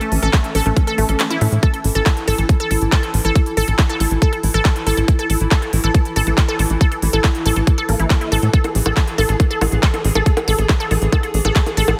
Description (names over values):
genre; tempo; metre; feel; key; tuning
psychedelic trance; 139 BPM; 4/4; straight; A major; A4 = 440 Hz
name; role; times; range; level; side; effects
pulsing gated texture; sustained chords; 0.0-12.0 s; E3 to G#4; -28 LUFS; equal; chorus, built-in reverb, sidechain pumping
unison pluck; riff; 0.0-11.9 s; A3 to A4; -24 LUFS; equal; sidechain pumping, tape echo
big-room dance drum kit; drums; 0.0-12.0 s; bongos, handclaps, hi-hat; -25 LUFS; equal; overdrive
tight sequencer bass; bass; 0.1-11.9 s; A1 to A2; -20 LUFS; equal; none
electronic kick drum; drums; 0.3-11.6 s; none; -17 LUFS; equal; none
swell; sound effects; 0.9-1.6 s; none; -32 LUFS; equal; none
room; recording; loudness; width
light reverb; heavily compressed radio sound; -17 LUFS; mono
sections
0.0-12.0 A section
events
kick drops out 1.2-1.6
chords
0.0 A5